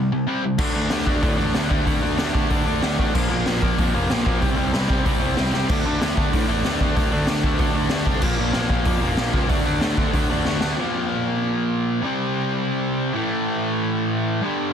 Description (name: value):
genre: punk rock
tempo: 188 BPM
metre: 4/4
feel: straight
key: D minor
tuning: A4 = 443 Hz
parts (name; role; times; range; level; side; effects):
- cranked stack guitar; riff; 0.0-14.7 s; G2 to D4; -21 LUFS; equal; overdrive
- fuzz picked electric bass; bass; 0.6-10.7 s; F1 to A2; -27 LUFS; equal; overdrive
- raw garage drum kit; drums; 0.6-10.7 s; crash cymbal, hi-hat, kick drum, snare drum; -23 LUFS; equal; none
room: little or no reverb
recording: dense, heavily limited modern master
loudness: -19 LUFS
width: side -8 dB against mid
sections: 0.6-10.8 A section; 10.8-14.7 B section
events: break 0.0-0.6; drum fill 5.5, 10.4-10.8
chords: 0.0 C5; 0.6 D5; 3.2 Bb5; 4.4 C5; 5.7 D5; 8.2 Bb5; 9.5 D5; 10.8 Bb5; 12.0 C5; 13.2 A5